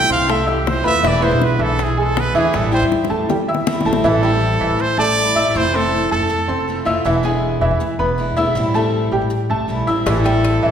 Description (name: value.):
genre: latin, Cuban son and guajira.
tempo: 160 BPM.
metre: 4/4.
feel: straight.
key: A minor.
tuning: A4 = 440 Hz.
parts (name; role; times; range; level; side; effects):
clear trumpet; melody; 0.0-6.8, 10.1-10.7 s; G4 to G5; -19 LUFS; right 2 dB; none.
picked steel-string acoustic guitar; accompaniment; 0.0-10.7 s; B2 to F4; -22 LUFS; left 1 dB; none.
bright baby grand piano; arpeggios; 0.0-10.7 s; E3 to E6; -20 LUFS; right 1 dB; none.
upright bass; bass; 0.0-10.7 s; E1 to A2; -21 LUFS; equal; none.
bongos and cowbell; percussion; 0.3-4.0, 10.1-10.6 s; none; -24 LUFS; left 4 dB; none.
room: wet concert hall reverb, RT60 1.9 s.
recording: recorded in a church or concert hall.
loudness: -15 LUFS.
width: side -8 dB against mid.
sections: 0.0-4.0 A section; 4.0-10.7 B section.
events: trumpet solo 0.0-4.0; drum fill 2.9-4.0.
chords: 0.0 Fmaj7; 1.0 E7; 2.5 Am7; 5.5 Fmaj7; 7.1 E7; 8.6 Am7.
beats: 0.29 0.66 | 1.04 1.41 1.79 2.17 | 2.54 2.92 3.29 3.67 | 4.04 4.42 4.80 5.17 | 5.55 5.92 6.30 6.68 | 7.05 7.43 7.81 8.18 | 8.56 8.93 9.31 9.69 | 10.06 10.44.